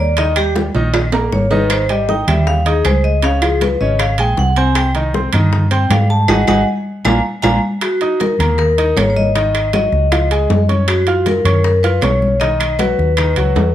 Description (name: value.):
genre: Afro-Cuban jazz.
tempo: 157 BPM.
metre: 4/4.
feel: straight.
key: Eb minor from 7.8 s.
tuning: A4 = 440 Hz.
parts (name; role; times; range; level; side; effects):
vibraphone with medium hard mallets; melody; 0.0-13.7 s; Gb4 to Bb5; -17 LUFS; left 1 dB; none.
warm baby grand piano; accompaniment; 0.0-13.7 s; C3 to F6; -21 LUFS; right 1 dB; none.
hollow-body short-scale fingered electric bass; bass; 0.0-13.7 s; Ab1 to Ab2; -16 LUFS; equal; none.
bongos; percussion; 0.2-13.7 s; none; -26 LUFS; left 7 dB; none.
congas; percussion; 0.2-13.7 s; none; -22 LUFS; left 1 dB; none.
timbales; percussion; 0.2-13.7 s; none; -23 LUFS; right 6 dB; none.
claves; percussion; 0.4-13.4 s; none; -27 LUFS; left 2 dB; none.
room: light reverb.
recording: close, detailed microphones.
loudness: -12 LUFS.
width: side -12 dB against mid.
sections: 0.0-7.8 A section; 7.8-13.7 B section.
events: vibraphone solo 0.0-7.8; drum fill 0.6-1.7; band accent 6.3-7.8.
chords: 0.2 Eb; 1.7 Ab5; 3.2 C#; 4.8 Cm; 6.3 Ab5; 7.1 Bb7; 7.8 Ebm; 9.3 Ab7sus4; 10.1 Dbadd9; 10.9 Gbmaj7; 12.4 Badd9.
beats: | 0.17 0.56 0.94 1.32 | 1.70 2.09 2.47 2.85 | 3.23 3.62 4.00 4.38 | 4.76 5.14 5.53 5.91 | 6.29 6.67 7.05 7.44 | 7.82 8.20 8.59 8.97 | 9.35 9.73 10.12 10.50 | 10.88 11.26 11.65 12.03 | 12.41 12.80 13.18 13.56.